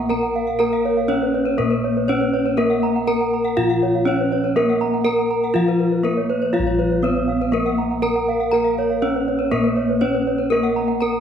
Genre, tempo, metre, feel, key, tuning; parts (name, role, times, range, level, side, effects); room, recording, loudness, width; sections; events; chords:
Balinese gamelan; 121 BPM; 4/4; straight; Bb pelog; A4 = 440 Hz
gamelan-type bronze metallophone; melody; 0.0-11.2 s; Bb3 to Bb4; -20 LUFS; right 1 dB
gamelan-type bronze metallophone; accompaniment; 0.0-11.2 s; F3 to Bb3; -27 LUFS; left 10 dB
gamelan-type bronze metallophone; arpeggios; 0.0-11.2 s; Bb4 to Bb5; -26 LUFS; right 4 dB
gamelan-type bossed gongs; bass; 0.0-11.2 s; Bb1 to Bb4; -25 LUFS; right 1 dB
gamelan-type bronze metallophone; arpeggios; 0.1-11.1 s; Bb4 to Bb5; -26 LUFS; left 4 dB
wet recital hall reverb, RT60 1.7 s; recorded in a church or concert hall; -17 LUFS; side -8 dB against mid
0.0-11.2 A section